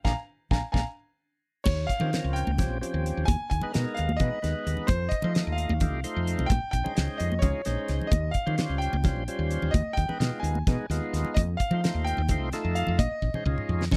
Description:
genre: electric jazz fusion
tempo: 260 BPM (eighths)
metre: 7/8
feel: straight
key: Eb mixolydian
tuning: A4 = 439 Hz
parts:
  - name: clear concert grand piano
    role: melody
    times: 0.0-14.0 s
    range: C5 to Bb5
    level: -35 LUFS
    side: equal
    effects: none
  - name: damped 70s drum kit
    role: drums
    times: 0.0-14.0 s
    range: crash cymbal, hi-hat, kick drum, snare drum, toms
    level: -30 LUFS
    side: equal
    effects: none
  - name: overdriven tonewheel organ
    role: accompaniment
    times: 0.1-14.0 s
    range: F3 to Eb5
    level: -36 LUFS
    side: equal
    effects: slow rotary speaker
  - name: woody fretless electric bass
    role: bass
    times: 0.1-14.0 s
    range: Bb1 to F3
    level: -31 LUFS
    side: equal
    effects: none
  - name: congas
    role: percussion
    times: 1.7-14.0 s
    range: none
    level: -35 LUFS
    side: equal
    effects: none
room: little or no reverb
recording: none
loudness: -27 LUFS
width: mono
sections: 0.0-1.7 A section; 1.7-14.0 B section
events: band accent 0.1-1.7; drum fill 13.2-14.0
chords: 0.1 Bb7; 1.7 Eb13; 3.3 Abm/Eb; 4.9 F7; 6.5 Bbm11; 8.1 Eb13; 9.7 Abm/Eb; 11.4 F7; 13.0 Bbm11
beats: | 0.05 0.28 0.52 0.74 0.98 1.21 1.44 | 1.67 1.90 2.13 2.36 2.59 2.82 3.05 | 3.28 3.51 3.74 3.97 4.20 4.43 4.66 | 4.89 5.12 5.35 5.58 5.81 6.04 6.28 | 6.51 6.74 6.97 7.20 7.43 7.66 7.89 | 8.12 8.35 8.58 8.81 9.05 9.28 9.51 | 9.74 9.97 10.20 10.44 10.67 10.90 11.13 | 11.36 11.60 11.83 12.06 12.29 12.53 12.76 | 12.99 13.22 13.46 13.69 13.92

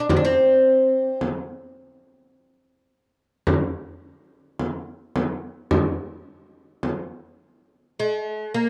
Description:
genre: Arabic maqam ensemble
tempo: 106 BPM (eighths)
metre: 10/8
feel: straight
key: unclear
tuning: A4 = 440 Hz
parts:
  - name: oud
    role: melody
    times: 0.0-8.7 s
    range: Ab3+50c to D4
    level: -21 LUFS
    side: equal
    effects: none
  - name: frame drum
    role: percussion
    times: 0.1-7.1 s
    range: none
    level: -26 LUFS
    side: equal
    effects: none
room: studio ambience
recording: dry, close 1970s-style studio recording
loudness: -23 LUFS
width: mono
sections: 0.0-8.7 A section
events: none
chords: none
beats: | 0.08 0.64 1.21 1.77 2.34 2.90 3.46 4.03 4.59 5.16 | 5.72 6.28 6.85 7.41 7.97 8.54

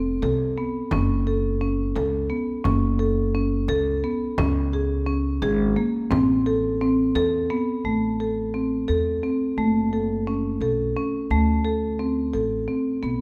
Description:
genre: contemporary instrumental, chamber music in an uneven meter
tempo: 174 BPM (eighths)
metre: 5/8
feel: straight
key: unclear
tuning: A4 = 440 Hz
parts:
  - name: marimba with medium mallets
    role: arpeggios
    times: 0.0-13.2 s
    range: A3 to A4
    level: -25 LUFS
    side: equal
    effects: none
  - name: upright bass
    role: bass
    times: 0.0-13.2 s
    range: F1 to E2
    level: -28 LUFS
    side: equal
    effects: none
  - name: frame drum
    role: percussion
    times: 0.2-7.5 s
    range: none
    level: -32 LUFS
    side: equal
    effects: none
room: moderate scoring stage reverb, RT60 1.9 s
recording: none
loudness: -23 LUFS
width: mono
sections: 0.0-7.8 A section; 7.8-13.2 B section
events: none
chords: 0.0 F; 0.9 F#m; 4.4 C#5; 6.1 Am; 9.6 F#m; 11.3 D5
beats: 0.23 0.58 | 0.93 1.27 1.62 1.96 2.31 | 2.65 3.00 3.35 3.69 4.04 | 4.38 4.73 5.08 5.42 5.77 | 6.11 6.46 6.80 7.15 7.50 | 7.84 8.19 8.53 8.88 9.23 | 9.57 9.92 10.26 10.61 10.96 | 11.30 11.65 11.99 12.34 12.68 | 13.03

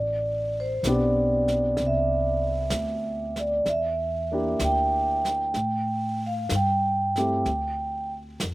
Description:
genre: jazz ballad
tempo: 64 BPM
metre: 4/4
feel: swing 69% on 8ths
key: unclear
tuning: A4 = 440 Hz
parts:
  - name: vibraphone with medium mallets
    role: melody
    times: 0.0-8.1 s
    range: C5 to G5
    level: -25 LUFS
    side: right 1 dB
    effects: slapback echo
  - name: upright bass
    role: bass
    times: 0.0-8.5 s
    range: A1 to A2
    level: -30 LUFS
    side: equal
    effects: none
  - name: jazz brush drum kit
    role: drums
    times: 0.8-8.5 s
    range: brushed snare drum, hi-hat, snare drum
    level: -33 LUFS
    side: right 1 dB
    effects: none
  - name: dark baby grand piano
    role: accompaniment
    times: 0.9-7.5 s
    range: A3 to G4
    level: -29 LUFS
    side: left 1 dB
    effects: slapback echo
room: little or no reverb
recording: recorded outdoors, with no room sound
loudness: -23 LUFS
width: side -19 dB against mid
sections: 0.0-8.5 A section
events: vibraphone solo 0.0-8.5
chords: 0.0 Am11; 3.7 Em7b5; 5.5 A5; 7.5 N.C.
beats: 0.86 1.79 2.72 | 3.66 4.60 5.55 6.51 | 7.47 8.42

